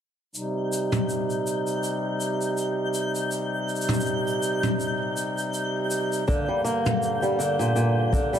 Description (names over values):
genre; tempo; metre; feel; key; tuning
folktronica; 81 BPM; 4/4; swing 56% on 16ths; C minor; A4 = 437 Hz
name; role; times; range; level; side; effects
shaker and toms; drums; 0.3-8.4 s; none; -29 LUFS; left 1 dB; none
twinkling granular texture; texture; 0.7-8.4 s; G6; -34 LUFS; left 1 dB; built-in reverb
pedal harmonium; sustained chords; 0.4-8.4 s; G2 to Eb4; -26 LUFS; right 1 dB; low-pass filter
fingerpicked swing-style acoustic guitar; arpeggios; 6.3-8.4 s; Bb2 to Bb3; -24 LUFS; right 1 dB; vintage 12-bit sampler grit, tape echo
kick drum; drums; 6.3-8.3 s; none; -26 LUFS; equal; none
room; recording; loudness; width
moderate plate reverb, RT60 2.2 s; none; -23 LUFS; side -8 dB against mid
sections
0.3-8.4 A section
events
filter sweep on harmonium 0.3-8.4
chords
0.3 Cm; 6.3 Gm